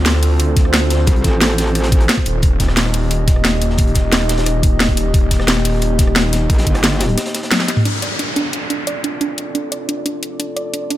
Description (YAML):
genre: dark technical drum and bass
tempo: 177 BPM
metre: 4/4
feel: straight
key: D phrygian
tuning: A4 = 440 Hz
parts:
  - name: dark analog pad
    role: sustained chords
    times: 0.0-11.0 s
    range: Bb3 to Eb5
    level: -23 LUFS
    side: equal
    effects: chorus, sidechain pumping
  - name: wide detuned saw bass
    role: bass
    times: 0.0-6.5 s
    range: Eb1 to D2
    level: -17 LUFS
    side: equal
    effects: chorus, overdrive, sidechain pumping
  - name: crunchy breakbeat drum kit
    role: drums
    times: 0.1-7.8 s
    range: hi-hat, snare drum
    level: -28 LUFS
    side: equal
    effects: none
  - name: drum and bass drum kit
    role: drums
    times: 0.1-11.0 s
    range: hi-hat, rim click, snare drum, toms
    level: -18 LUFS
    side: equal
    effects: overdrive
  - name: electronic kick drum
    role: drums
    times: 0.6-6.7 s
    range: none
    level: -14 LUFS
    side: equal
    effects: none
  - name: metallic wobble bass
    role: bass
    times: 1.1-2.1, 6.5-7.2 s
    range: G1 to C2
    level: -17 LUFS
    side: equal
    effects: distortion, chorus
  - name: soft round pluck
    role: arpeggios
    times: 7.9-11.0 s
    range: D4 to D5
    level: -22 LUFS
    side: right 4 dB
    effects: chorus, sidechain pumping, dub echo
  - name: downlifter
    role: sound effects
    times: 7.9-10.6 s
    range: none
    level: -25 LUFS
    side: equal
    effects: none
room: light reverb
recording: none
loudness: -14 LUFS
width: side -14 dB against mid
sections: 0.0-7.9 A section; 7.9-11.0 B section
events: drop 0.0-7.9; drum fill 7.5-7.9; band accent 7.5; filter sweep on synth pluck 7.9-11.0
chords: 0.0 Dm7; 2.4 Eb; 7.9 Dm7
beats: 0.06 0.40 0.73 | 1.07 1.41 1.75 2.09 | 2.43 2.77 3.11 3.45 | 3.79 4.12 4.46 4.80 | 5.14 5.48 5.82 6.16 | 6.50 6.84 7.18 7.51 | 7.85 8.19 8.53 8.87 | 9.21 9.55 9.89 10.23 | 10.56 10.90